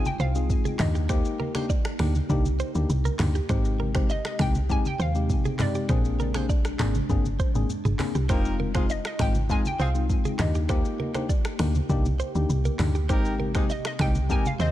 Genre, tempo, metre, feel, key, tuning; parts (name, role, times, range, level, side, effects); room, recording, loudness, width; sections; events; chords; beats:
afrobeats; 100 BPM; 4/4; straight; Eb major; A4 = 440 Hz
hollow square pluck; melody; 0.0-14.7 s; D5 to Ab5; -33 LUFS; equal; chorus, ping-pong delay
tine electric piano; accompaniment; 0.0-14.5 s; Ab3 to Ab4; -31 LUFS; left 6 dB
glassy FM pad; sustained chords; 0.0-14.7 s; C3 to G4; -35 LUFS; right 1 dB; ensemble chorus, built-in reverb
impact; sound effects; 0.0-1.1 s; barely audible
afro-pop drum kit; drums; 0.1-14.7 s; finger snaps, handclaps, hi-hat, kick drum, rim click, shaker, toms; -27 LUFS; equal
congas; percussion; 0.1-14.6 s; -33 LUFS; right 2 dB
direct-recorded clean electric guitar; riff; 0.2-14.7 s; G4 to Eb5; -37 LUFS; right 7 dB; ping-pong delay
woody log drum bass; bass; 0.2-14.7 s; F1 to Eb2; -26 LUFS; equal
dark horn section; second line; 8.3-14.7 s; G3 to C5; -35 LUFS; equal
little or no reverb; dark, warm production; -22 LUFS; side -14 dB against mid
0.0-14.7 A section
impact 0.0-1.1
0.0 Fm7; 0.8 Ebmaj7; 3.5 Abmaj7; 5.9 Bb9; 8.3 Fm7; 10.4 Ebmaj7; 13.1 Abmaj7
0.50 | 1.10 1.70 2.30 2.90 | 3.50 4.10 4.70 5.30 | 5.90 6.50 7.10 7.70 | 8.30 8.90 9.50 10.10 | 10.70 11.30 11.90 12.50 | 13.10 13.70 14.30